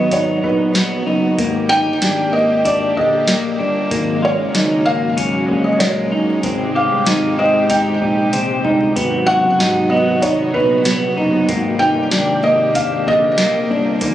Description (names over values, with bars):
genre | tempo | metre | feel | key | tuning
dream pop | 95 BPM | 4/4 | straight | unclear | A4 = 440 Hz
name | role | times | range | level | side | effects
felt-muted upright piano | melody | 0.0-13.7 s | B4 to G5 | -18 LUFS | equal | digital delay
string machine, violas | sustained chords | 0.0-14.1 s | C3 to G4 | -21 LUFS | right 1 dB | ensemble chorus
clean electric guitar | arpeggios | 0.0-14.1 s | D3 to G4 | -20 LUFS | left 1 dB | wide subtle chorus, digital delay
fat analog bass | bass | 0.0-14.1 s | F#1 to Bb1 | -23 LUFS | equal | none
soft vintage rhythm box | drums | 0.1-14.1 s | hi-hat, kick drum, snare drum, toms | -22 LUFS | equal | overdrive
room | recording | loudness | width
moderate huge ambient reverb, RT60 3.9 s | recorded on a phone in the room, studio reverb, compression, nothing above 10.7 kHz | -14 LUFS | side -12 dB against mid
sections
0.0-14.1 A section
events
drum fill 8.3-9.0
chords
0.0 B; 1.4 Ebmaj7; 3.9 Gbadd9; 6.4 Abmaj7; 9.0 B; 11.5 Ebmaj7